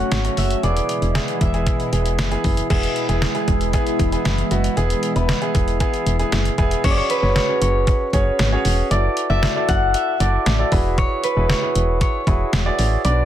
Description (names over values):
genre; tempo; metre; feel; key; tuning
synth-pop; 116 BPM; 4/4; straight; unclear; A4 = 440 Hz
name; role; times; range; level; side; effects
concert harp; melody; 0.0-3.1, 6.8-13.2 s; B4 to G#5; -22 LUFS; equal; tape echo
warm concert grand piano; accompaniment; 0.0-13.2 s; A3 to D5; -23 LUFS; right 1 dB; none
phased analog pad; sustained chords; 0.0-6.8 s; B2 to F#4; -26 LUFS; equal; phaser, chorus
solid FM bass; bass; 0.0-13.2 s; E1 to B1; -20 LUFS; equal; none
detuned 8-bit digital drum machine; drums; 0.1-13.2 s; crash cymbal, hi-hat, kick drum, snare drum; -22 LUFS; equal; none
room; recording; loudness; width
light reverb; dense, heavily limited modern master; -17 LUFS; side -11 dB against mid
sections
0.0-2.7 A section; 2.7-6.8 B section; 6.8-13.2 C section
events
none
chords
0.0 F#m; 0.6 E; 6.8 F#sus2; 8.9 Dadd9/F#; 10.7 Eadd9